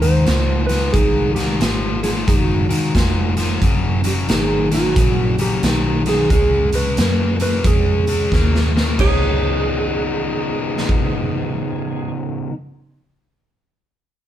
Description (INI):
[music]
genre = electric blues shuffle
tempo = 89 BPM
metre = 4/4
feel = swing 63% on 8ths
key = Db mixolydian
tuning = A4 = 438 Hz
[part]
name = clean lap steel guitar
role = melody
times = 0.0-12.1 s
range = Gb4 to Db5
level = -22 LUFS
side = right 3 dB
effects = none
[part]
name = biting overdriven guitar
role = riff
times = 0.0-12.5 s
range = Gb2 to Eb4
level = -21 LUFS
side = left 3 dB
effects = none
[part]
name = vintage muted fingered electric bass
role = bass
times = 0.0-12.1 s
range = F1 to Gb2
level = -21 LUFS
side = equal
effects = none
[part]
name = raw garage drum kit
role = drums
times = 0.0-11.0 s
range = crash cymbal, hi-hat, kick drum, snare drum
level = -20 LUFS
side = equal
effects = none
[part]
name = electric slide guitar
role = second line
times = 9.0-12.1 s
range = Ab4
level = -24 LUFS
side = right 1 dB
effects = none
[sound]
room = moderate large studio reverb, RT60 0.9 s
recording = band playing live in one room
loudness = -15 LUFS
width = side -11 dB against mid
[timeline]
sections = 0.0-9.0 A section; 9.0-11.7 B section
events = drum fill 8.3-9.0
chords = 0.0 Ab7; 3.6 Gb; 6.3 Db7; 9.0 Db9